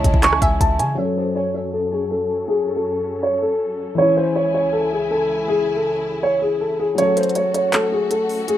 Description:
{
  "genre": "hip hop, trap",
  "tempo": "160 BPM",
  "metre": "4/4",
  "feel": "half-time",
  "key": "unclear",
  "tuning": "A4 = 439 Hz",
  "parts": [
    { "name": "dark concert grand piano", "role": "melody", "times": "0.0-8.6 s", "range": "G#4 to C#6", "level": "-19 LUFS", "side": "equal", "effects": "low-pass filter, analog delay" },
    { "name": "glassy wavetable pluck", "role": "second line", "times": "0.0-0.9 s", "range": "C#5 to G#5", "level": "-28 LUFS", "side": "right 1 dB", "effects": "chorus, analog delay" },
    { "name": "felt-muted upright piano", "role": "accompaniment", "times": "0.0-8.6 s", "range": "E3 to A4", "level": "-26 LUFS", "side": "left 4 dB", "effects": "low-pass filter" },
    { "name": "warm symphonic string section", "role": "sustained chords", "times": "0.0-8.6 s", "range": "C#2 to G#5", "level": "-29 LUFS", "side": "left 1 dB", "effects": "low-pass filter" },
    { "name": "warm 808-style bass", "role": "bass", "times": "0.0-1.0 s", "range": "C#2 to C#3", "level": "-22 LUFS", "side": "equal", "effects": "none" },
    { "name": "trap drum kit", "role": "drums", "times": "0.0-0.9, 7.0-8.6 s", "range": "handclaps, hi-hat, kick drum, rim click", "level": "-19 LUFS", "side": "equal", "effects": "none" }
  ],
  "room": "light reverb, studio reverb",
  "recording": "rough home demo mix",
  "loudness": "-17 LUFS",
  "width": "side -12 dB against mid",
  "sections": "1.0-7.0 A section; 7.0-8.6 B section",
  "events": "filter sweep 1.0-7.0; kick muted 7.0-8.6",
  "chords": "0.0 C#m; 1.0 F#m; 4.0 C#m; 7.0 F#m"
}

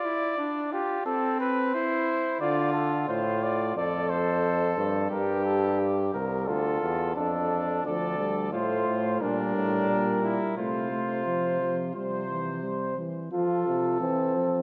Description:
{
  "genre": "classical, imitative canzona for brass ensemble",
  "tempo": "88 BPM",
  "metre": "4/4",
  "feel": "straight",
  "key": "D minor, F major from 7.8 s",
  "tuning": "A4 = 440 Hz",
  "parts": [
    { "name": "mellow trumpet", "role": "melody", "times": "0.0-14.6 s", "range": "F4 to D5", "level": "-33 LUFS", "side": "equal", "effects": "none" },
    { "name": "warm flugelhorn", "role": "second line", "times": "0.0-13.0 s", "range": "C4 to C5", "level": "-32 LUFS", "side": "equal", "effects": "none" },
    { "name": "clear euphonium", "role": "bass", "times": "2.4-14.6 s", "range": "C2 to F3", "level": "-32 LUFS", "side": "equal", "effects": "none" },
    { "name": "mellow trombone", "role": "accompaniment", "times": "7.8-14.6 s", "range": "E3 to F4", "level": "-32 LUFS", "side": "equal", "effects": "none" }
  ],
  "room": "wet concert hall reverb, RT60 2.4 s",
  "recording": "dark, warm production, nothing above 7.6 kHz",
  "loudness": "-27 LUFS",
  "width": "mono",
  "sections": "0.0-7.8 A section; 7.8-13.3 B section; 13.3-14.6 C section",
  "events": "none",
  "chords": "0.0 Dm; 1.1 Am/C; 2.4 Dm; 3.8 Dm/F; 5.1 Gm; 6.5 Dm; 9.2 Gm; 10.6 F/C; 12.0 C; 13.3 F"
}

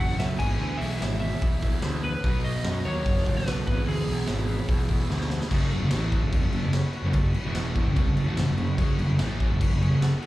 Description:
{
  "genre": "garage rock duo or trio",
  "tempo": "147 BPM",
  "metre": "4/4",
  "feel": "straight",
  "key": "F# minor",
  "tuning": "A4 = 439 Hz",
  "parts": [
    { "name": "electric slide guitar", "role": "melody", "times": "0.0-5.1 s", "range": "G#4 to G#5", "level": "-33 LUFS", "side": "equal", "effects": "plate reverb, slapback echo" },
    { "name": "overdriven combo organ", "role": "sustained chords", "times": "0.0-10.3 s", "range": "B3 to D5", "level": "-40 LUFS", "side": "equal", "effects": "spring reverb" },
    { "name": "fuzz guitar", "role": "riff", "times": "0.0-10.1 s", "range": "E2 to B3", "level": "-28 LUFS", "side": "equal", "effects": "distortion" },
    { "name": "fuzz picked electric bass", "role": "bass", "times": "0.0-10.1 s", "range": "E1 to F#2", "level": "-28 LUFS", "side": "equal", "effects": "overdrive, tube saturation" },
    { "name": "raw garage drum kit", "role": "drums", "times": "0.1-10.3 s", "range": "crash cymbal, hi-hat, kick drum, snare drum", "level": "-27 LUFS", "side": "equal", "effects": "none" }
  ],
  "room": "light reverb",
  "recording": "live gig heard through the venue's PA, club reverb",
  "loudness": "-23 LUFS",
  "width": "side -16 dB against mid",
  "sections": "0.0-5.5 A section; 5.5-10.3 B section",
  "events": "drum fill 5.1-5.5",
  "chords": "0.4 E/G#; 2.2 B; 3.1 F#m; 3.7 E/G#; 5.5 F#m"
}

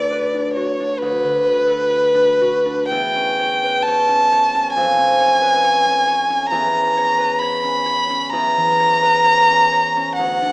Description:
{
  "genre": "classical, romantic duo for violin and harp",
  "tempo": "57-70 BPM",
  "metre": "4/4",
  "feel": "rubato",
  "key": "unclear",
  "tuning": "A4 = 438 Hz",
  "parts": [
    { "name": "warm violin", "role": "melody", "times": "0.0-10.5 s", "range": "B4 to B5", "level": "-15 LUFS", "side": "equal", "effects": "none" },
    { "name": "concert harp", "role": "accompaniment", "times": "0.0-10.5 s", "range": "D2 to D5", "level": "-22 LUFS", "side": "left 1 dB", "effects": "none" }
  ],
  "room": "wet scoring stage reverb, RT60 2.0 s",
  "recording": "small speaker sound",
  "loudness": "-14 LUFS",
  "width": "side -22 dB against mid",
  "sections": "0.0-10.5 A section",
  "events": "none",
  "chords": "0.0 Bm/D; 2.9 C#dim/E; 4.8 C#7/E#; 6.5 A#dim/E"
}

